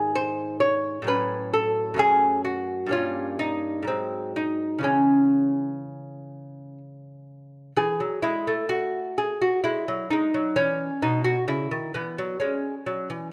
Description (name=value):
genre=classical, baroque-style dance for lute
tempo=61-67 BPM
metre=3/4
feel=rubato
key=C# minor, E major from 7.8 s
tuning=A4 = 440 Hz
part: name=lute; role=solo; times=0.0-13.3 s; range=F#2 to C#5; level=-25 LUFS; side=equal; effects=none
room=moderate recital hall reverb, RT60 1.8 s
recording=none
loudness=-25 LUFS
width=mono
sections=0.0-7.8 A section; 7.8-13.3 A section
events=none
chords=0.0 G#5; 1.1 F#m/A; 2.0 F#m; 2.9 D#7/G; 3.9 G#7; 4.9 C#m; 7.8 E; 10.6 C#m